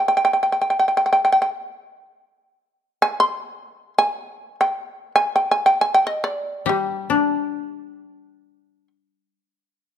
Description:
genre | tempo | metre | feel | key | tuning
japanese traditional, Japanese chamber music | free time | none | none | G miyako bushi | A4 = 437 Hz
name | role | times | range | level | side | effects
shamisen | melody | 0.0-8.9 s | G4 to C6 | -17 LUFS | right 1 dB | none
koto | accompaniment | 0.0-0.5, 6.7-9.4 s | Eb3 to D4 | -21 LUFS | left 7 dB | none
room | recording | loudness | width
moderate recital hall reverb, RT60 1.6 s | close, detailed microphones | -18 LUFS | side -9 dB against mid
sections
0.0-10.0 A section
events
none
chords
none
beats
free time

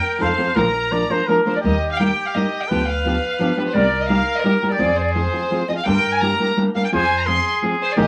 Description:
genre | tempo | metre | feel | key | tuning
mexican folk, mariachi | 170 BPM | 3/4 | straight | unclear | A4 = 442 Hz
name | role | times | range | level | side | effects
warm chamber violin section | melody | 0.0-8.1 s | Bb4 to C6 | -24 LUFS | equal | none
clear trumpet | second line | 0.0-8.1 s | G4 to D5 | -25 LUFS | equal | none
flamenco guitar | accompaniment | 0.2-8.1 s | G2 to Bb4 | -22 LUFS | equal | none
upright bass | bass | 0.2-8.1 s | Bb1 to G2 | -28 LUFS | equal | none
room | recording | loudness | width
wet club reverb, RT60 0.5 s | vinyl crackle | -19 LUFS | mono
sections
0.0-1.6 A section; 1.6-8.1 B section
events
none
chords
0.2 F7; 0.6 Bb; 1.6 Eb; 2.7 G7/D; 3.7 Cm7; 4.8 Fm; 5.9 Gm; 6.9 Fm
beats
0.21 | 0.56 0.92 1.27 | 1.63 1.98 2.34 | 2.69 3.04 3.40 | 3.75 4.09 4.44 | 4.79 5.14 5.50 | 5.86 6.21 6.57 | 6.92 7.27 7.62 | 7.97

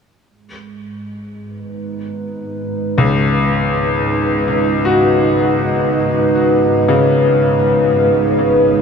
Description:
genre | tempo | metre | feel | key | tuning
dark ambient drone | free time | none | none | G# minor | A4 = 439 Hz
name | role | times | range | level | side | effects
dark analog pad | sustained chords | 0.3-8.8 s | G#3 to D#5 | -15 LUFS | right 1 dB | chorus, shimmer reverb
swarming drone | drone | 0.9-8.8 s | G#1 to G#2 | -26 LUFS | right 1 dB | built-in reverb
bright grand piano | arpeggios | 3.0-8.8 s | C#2 to F#4 | -16 LUFS | left 4 dB | tape echo, shimmer reverb
room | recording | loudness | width
wet huge ambient reverb, RT60 8.3 s | in a vast, echoing space | -12 LUFS | side -6 dB against mid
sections
0.3-8.8 A section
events
fade-in on synth drone 0.3-8.8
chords
0.3 G#m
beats
free time

